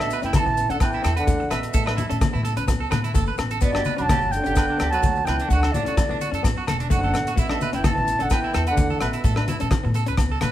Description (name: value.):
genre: highlife guitar band.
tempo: 128 BPM.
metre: 4/4.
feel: straight.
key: A mixolydian.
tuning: A4 = 440 Hz.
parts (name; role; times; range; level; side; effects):
mellow wooden flute; melody; 0.0-9.7 s; D5 to B5; -26 LUFS; right 1 dB; none.
warm trombone; second line; 0.0-9.7 s; A2 to F#3; -30 LUFS; right 2 dB; none.
direct-recorded clean electric guitar; accompaniment; 0.0-10.5 s; A3 to D4; -32 LUFS; left 6 dB; none.
electric guitar at the edge of break-up; arpeggios; 0.0-10.5 s; B3 to B4; -30 LUFS; right 6 dB; none.
upright bass; bass; 0.0-10.5 s; E1 to D3; -26 LUFS; equal; none.
damped 70s drum kit; drums; 0.0-10.5 s; hi-hat, kick drum, rim click; -24 LUFS; equal; none.
agogo bells; percussion; 0.0-10.5 s; none; -34 LUFS; left 5 dB; none.
maracas; percussion; 0.0-10.5 s; none; -40 LUFS; left 6 dB; none.
congas; percussion; 0.3-10.5 s; none; -29 LUFS; left 2 dB; none.
room: moderate large studio reverb, RT60 1.3 s.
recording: band playing live in one room.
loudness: -19 LUFS.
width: side -13 dB against mid.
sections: 0.0-10.5 A section.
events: none.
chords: 0.0 Asus2; 3.6 G; 5.5 D; 7.4 Asus2.